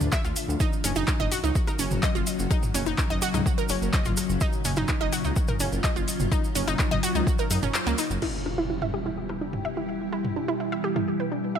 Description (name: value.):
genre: melodic techno.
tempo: 126 BPM.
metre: 4/4.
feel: straight.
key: unclear.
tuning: A4 = 440 Hz.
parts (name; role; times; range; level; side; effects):
evolving wavetable pad; sustained chords; 0.0-11.6 s; A2 to G4; -30 LUFS; left 2 dB; ensemble chorus, built-in reverb, phaser, sidechain pumping.
swelling detuned saw bass; bass; 0.0-8.2 s; F#1 to F#2; -29 LUFS; equal; sidechain pumping.
punchy analog drum machine; drums; 0.0-11.1 s; crash cymbal, handclaps, hi-hat, rim click, toms; -31 LUFS; equal; overdrive.
maracas; percussion; 0.0-8.2 s; none; -35 LUFS; right 4 dB; none.
analog pluck; arpeggios; 0.1-11.6 s; A#3 to E5; -30 LUFS; right 2 dB; chorus, sidechain pumping, digital delay.
electronic kick drum; drums; 0.1-7.4 s; none; -26 LUFS; equal; overdrive.
impact; sound effects; 8.2-10.1 s; none; -36 LUFS; equal; none.
room: light reverb, digital ambience.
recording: none.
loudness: -23 LUFS.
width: side -8 dB against mid.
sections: 0.0-8.2 A section; 8.2-11.6 B section.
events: drop 0.0-8.2; kick drops out 7.7-8.2; band accent 7.7; impact 8.2-10.1; filter sweep on synth arpeggio sound 8.2-11.6.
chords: 0.0 Dm; 0.6 F#; 8.2 Em.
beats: 0.12 | 0.60 1.08 1.55 2.03 | 2.51 2.98 3.46 3.94 | 4.41 4.89 5.36 5.84 | 6.32 6.79 7.27 7.75 | 8.22 8.70 9.17 9.65 | 10.12 10.60 11.08 11.55.